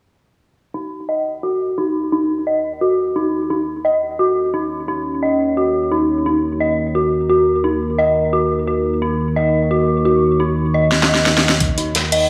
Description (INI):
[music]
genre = dark technical drum and bass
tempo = 174 BPM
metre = 4/4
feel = straight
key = unclear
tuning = A4 = 442 Hz
[part]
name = deep dark ambient pad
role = sustained chords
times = 4.6-12.3 s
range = Eb3 to Db6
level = -23 LUFS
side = equal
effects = chorus, built-in reverb, sidechain pumping
[part]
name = dark detuned synth bell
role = arpeggios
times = 0.7-12.2 s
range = Eb4 to Eb5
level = -19 LUFS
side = equal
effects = chorus, phaser, sidechain pumping, low-pass filter, digital delay
[part]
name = drum and bass drum kit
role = drums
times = 10.9-12.2 s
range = hi-hat, snare drum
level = -18 LUFS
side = equal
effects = overdrive
[part]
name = crunchy breakbeat drum kit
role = drums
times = 11.6-12.2 s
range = hi-hat, snare drum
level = -23 LUFS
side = equal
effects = high-pass filter on hats, high-pass filter on snare, high-pass filter on room
[part]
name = electronic kick drum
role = drums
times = 11.6-11.7 s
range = none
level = -22 LUFS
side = equal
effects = none
[sound]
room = moderate lush hall reverb, RT60 1.5 s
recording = studio reverb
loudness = -17 LUFS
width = mono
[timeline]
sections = 0.6-12.3 A section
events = filter sweep on ambient pad 0.6-12.3; filter sweep on synth bell 0.6-12.3; drum fill 10.9-11.6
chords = 0.6 Eb5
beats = | 0.57 0.92 1.26 1.60 | 1.95 2.29 2.64 2.98 | 3.33 3.67 4.02 4.36 | 4.71 5.05 5.40 5.74 | 6.09 6.43 6.78 7.12 | 7.47 7.81 8.16 8.50 | 8.85 9.19 9.54 9.88 | 10.23 10.57 10.92 11.26 | 11.61 11.95 12.29